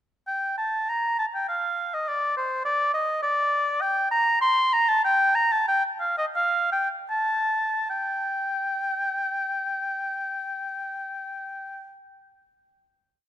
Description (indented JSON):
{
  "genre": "classical, baroque-style fantasia for unaccompanied oboe",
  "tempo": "71-105 BPM",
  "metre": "3/4",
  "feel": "rubato",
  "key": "G minor",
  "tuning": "A4 = 438 Hz",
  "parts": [
    { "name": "warm oboe", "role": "solo", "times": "0.3-11.9 s", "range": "C5 to C6", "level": "-23 LUFS", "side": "equal", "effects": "none" }
  ],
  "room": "moderate concert hall reverb, RT60 2.1 s",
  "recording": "none",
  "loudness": "-22 LUFS",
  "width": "side -11 dB against mid",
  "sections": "0.3-7.9 A section; 7.9-12.4 final note",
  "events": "slowing down 3.0-7.9",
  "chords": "none"
}